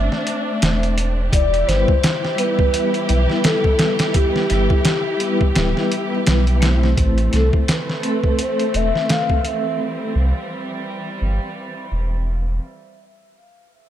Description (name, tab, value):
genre	trip hop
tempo	85 BPM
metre	4/4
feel	swing 58% on 16ths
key	A minor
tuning	A4 = 440 Hz
part	pure breathy sine lead	melody	0.0-9.8 s	G4 to F5	-23 LUFS	left 1 dB	wide subtle chorus, cassette tape, dub echo
part	warm symphonic string section	sustained chords	0.0-12.6 s	E3 to G4	-26 LUFS	equal	vintage 12-bit sampler grit, low-pass filter
part	warm sub bass	bass	0.0-12.6 s	D1 to C2	-18 LUFS	equal	none
part	trip hop sampler-style drum kit	drums	0.1-9.6 s	hi-hat, kick drum, snare drum	-19 LUFS	equal	none
part	vibraphone with medium hard mallets	accompaniment	1.7-10.1 s	G3 to C5	-23 LUFS	left 1 dB	tremolo
room	light reverb, digital ambience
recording	none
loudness	-16 LUFS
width	side -11 dB against mid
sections	0.0-7.0 A section; 7.0-12.6 B section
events	none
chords	0.0 Am; 1.3 Em; 7.0 Am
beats	0.62 | 1.32 2.03 2.73 3.44 | 4.15 4.85 5.56 6.26 | 6.97 7.68 8.38 9.09 | 9.79 10.50 11.21 11.91